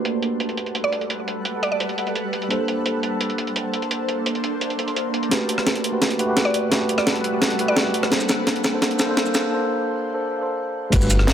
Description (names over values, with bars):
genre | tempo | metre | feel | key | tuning
liquid drum and bass | 171 BPM | 4/4 | straight | G major | A4 = 440 Hz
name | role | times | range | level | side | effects
mellow tine electric piano | accompaniment | 0.0-11.3 s | A3 to C5 | -24 LUFS | equal | low-pass filter, dub echo
shimmering ambient pad | sustained chords | 0.0-11.3 s | G3 to F#5 | -27 LUFS | right 1 dB | chorus, built-in reverb, phaser, sidechain pumping
jungle sampler-style drum kit | drums | 0.1-11.3 s | crash cymbal, hi-hat, rim click, shaker, snare drum | -23 LUFS | right 1 dB | low-pass filter on hats, low-pass filter on snare, low-pass filter on perc, low-pass filter on cymbals, low-pass filter on room
mallet-like synth pluck | melody | 0.8-1.8, 6.5-7.9 s | D5 | -26 LUFS | equal | chorus, dub echo
dark detuned saw bass | bass | 10.9-11.3 s | G1 | -18 LUFS | equal | none
crunchy breakbeat drum kit | drums | 10.9-11.3 s | ride cymbal, snare drum | -29 LUFS | equal | high-pass filter on cymbals, high-pass filter on snare, high-pass filter on room
electronic kick drum | drums | 10.9-11.0 s | none | -19 LUFS | equal | overdrive
room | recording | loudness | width
moderate plate reverb, RT60 1.7 s, digital ambience | high-pass filter | -20 LUFS | side -9 dB against mid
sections
0.0-5.3 A section; 5.3-10.9 B section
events
filter sweep on ambient pad 0.0-5.3; build-up 5.3-10.9; drum fill 5.3-9.5; filter sweep on tine electric piano 5.3-10.9; filter sweep 5.3-10.9; break 9.5-10.9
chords
0.0 Gmaj9; 2.5 Bbmaj9; 5.3 Gmaj9; 8.1 Bbmaj9